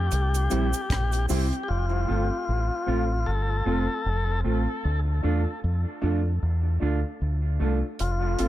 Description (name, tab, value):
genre	dub reggae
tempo	76 BPM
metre	4/4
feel	swing 57% on 16ths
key	D minor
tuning	A4 = 441 Hz
part	tonewheel organ	melody	0.0-8.5 s	F4 to A4	-31 LUFS	left 4 dB	overdrive, dub echo
part	deep dub fingered electric bass	bass	0.0-8.5 s	F1 to F2	-25 LUFS	equal	none
part	deep reggae drum kit	drums	0.1-1.7, 8.0-8.5 s	hi-hat, kick drum, rim click	-33 LUFS	right 1 dB	none
part	cabasa	percussion	0.1-1.5 s	none	-38 LUFS	right 10 dB	none
part	mellow electric guitar	accompaniment	0.5-8.5 s	G3 to F4	-32 LUFS	right 6 dB	dub echo
part	dark grand piano	stabs	0.5-8.5 s	C4 to A4	-34 LUFS	left 3 dB	dub echo
room	small room ambience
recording	none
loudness	-23 LUFS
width	side -14 dB against mid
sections	0.0-1.7 A section; 1.7-8.5 B section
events	part muted 1.7-8.0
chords	0.1 C; 1.7 F; 4.8 Dm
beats	0.11 0.90 | 1.68 2.47 3.26 4.05 | 4.84 5.63 6.42 7.21 | 7.99